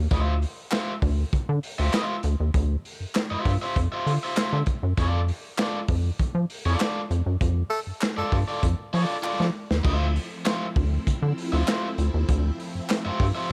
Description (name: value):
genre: funk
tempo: 99 BPM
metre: 4/4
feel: straight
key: D minor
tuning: A4 = 440 Hz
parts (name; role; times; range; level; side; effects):
- rubbery square bass; bass; 0.0-13.3 s; D2 to F3; -26 LUFS; equal; none
- overdriven electric guitar; accompaniment; 0.1-13.5 s; F4 to E5; -32 LUFS; equal; none
- crunchy breakbeat drum kit; drums; 0.1-13.3 s; crash cymbal, handclaps, hi-hat, kick drum, snare drum; -30 LUFS; equal; none
- group handclap; percussion; 0.7-13.0 s; none; -37 LUFS; equal; none
- breathy tenor saxophone; second line; 7.7-8.4 s; A4; -34 LUFS; equal; none
- phased string machine; sustained chords; 9.8-13.5 s; F3 to E4; -36 LUFS; equal; ensemble chorus, phaser
room: small room ambience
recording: none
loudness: -25 LUFS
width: mono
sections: 0.0-9.8 A section; 9.8-13.5 B section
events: band accent 7.4-9.8; drum fill 9.2-9.8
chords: 0.1 Dm9; 5.0 F6; 9.8 Dm9